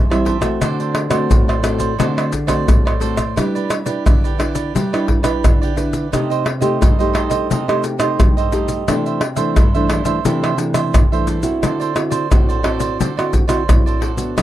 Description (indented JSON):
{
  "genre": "samba and choro",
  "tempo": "87 BPM",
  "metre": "4/4",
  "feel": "straight",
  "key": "G major",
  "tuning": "A4 = 440 Hz",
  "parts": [
    { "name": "cavaquinho", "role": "accompaniment", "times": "0.0-14.4 s", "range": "D4 to A5", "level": "-24 LUFS", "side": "right 10 dB", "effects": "none" },
    { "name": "nylon-string guitar", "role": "accompaniment", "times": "0.0-14.4 s", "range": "G2 to B4", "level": "-20 LUFS", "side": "equal", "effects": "none" },
    { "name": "maracas, pandeiro, tamborim and surdo", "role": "percussion", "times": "0.1-14.4 s", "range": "none", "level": "-16 LUFS", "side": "equal", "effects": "none" }
  ],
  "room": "little or no reverb",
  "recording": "dry, close 1970s-style studio recording, lossy compression artefacts",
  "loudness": "-14 LUFS",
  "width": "side -13 dB against mid",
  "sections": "0.0-3.4 A section; 3.4-14.4 B section",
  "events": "none",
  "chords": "0.0 Am7; 0.6 D7; 3.4 G6; 6.1 Cm6; 8.9 C69; 11.6 D9"
}